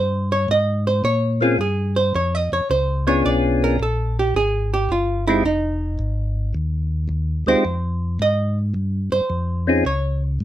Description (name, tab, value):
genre	soul jazz organ trio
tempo	109 BPM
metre	4/4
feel	swing 68% on 8ths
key	F minor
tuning	A4 = 436 Hz
part	archtop guitar, miked and amplified	accompaniment	0.0-10.2 s	Eb4 to Eb5	-21 LUFS	right 2 dB	none
part	mellow tonewheel organ	bass	0.0-10.4 s	F1 to Bb2	-22 LUFS	equal	slow rotary speaker
part	percussive tonewheel organ	melody	1.4-9.8 s	G#3 to Ab4	-18 LUFS	left 2 dB	slow rotary speaker
room	light reverb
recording	none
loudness	-18 LUFS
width	side -12 dB against mid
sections	0.0-10.4 A section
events	hollow-body jazz guitar solo 0.0-10.4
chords	0.0 Fm7 (rootless); 1.0 Bbm7; 3.2 Bdim7; 5.5 Fm7; 9.9 N.C.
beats	0.49 | 1.04 1.60 2.15 2.70 | 3.25 3.80 4.35 4.90 | 5.45 6.00 6.56 7.11 | 7.66 8.21 8.76 9.31 | 9.86 10.41